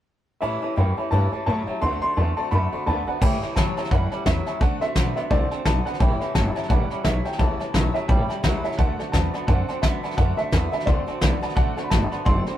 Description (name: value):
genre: rockabilly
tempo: 172 BPM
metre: 4/4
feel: swing 59% on 8ths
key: unclear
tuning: A4 = 440 Hz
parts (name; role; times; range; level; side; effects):
- warm upright piano; melody; 0.4-12.6 s; D5 to C6; -29 LUFS; left 1 dB; none
- honky-tonk upright piano; accompaniment; 0.4-12.6 s; C#5 to C6; -33 LUFS; left 1 dB; none
- picked acoustic archtop guitar; accompaniment; 0.4-12.6 s; A2 to F#4; -33 LUFS; left 2 dB; none
- twangy electric guitar; riff; 0.4-12.6 s; A2 to C4; -31 LUFS; right 3 dB; none
- upright bass; bass; 0.4-12.5 s; F#1 to A2; -25 LUFS; equal; none
- soft brush drum kit; drums; 3.2-12.5 s; crash cymbal, hi-hat, kick drum, snare drum; -22 LUFS; equal; none
room: light reverb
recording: rough rehearsal-room recording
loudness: -20 LUFS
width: side -12 dB against mid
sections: 0.4-3.2 A section; 3.2-12.6 B section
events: none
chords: 0.4 A7; 1.8 D7; 3.2 A7; 4.6 D7; 6.0 A7; 8.8 D7